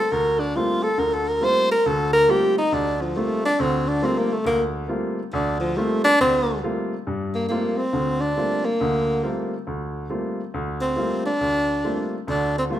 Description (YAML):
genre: jazz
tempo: 138 BPM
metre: 4/4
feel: swing 65% on 8ths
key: G minor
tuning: A4 = 436 Hz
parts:
  - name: mellow tenor saxophone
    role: melody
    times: 0.0-12.8 s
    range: F3 to C5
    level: -20 LUFS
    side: equal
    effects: none
  - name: warm baby grand piano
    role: accompaniment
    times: 0.1-12.8 s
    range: D2 to F4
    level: -25 LUFS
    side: equal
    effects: none
room: moderate large studio reverb, RT60 1.4 s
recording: minimal, uncompressed stereo recording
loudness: -20 LUFS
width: side -12 dB against mid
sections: 0.0-7.1 A section; 7.1-12.8 B section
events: tenor saxophone solo 0.0-7.1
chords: 0.0 Gm11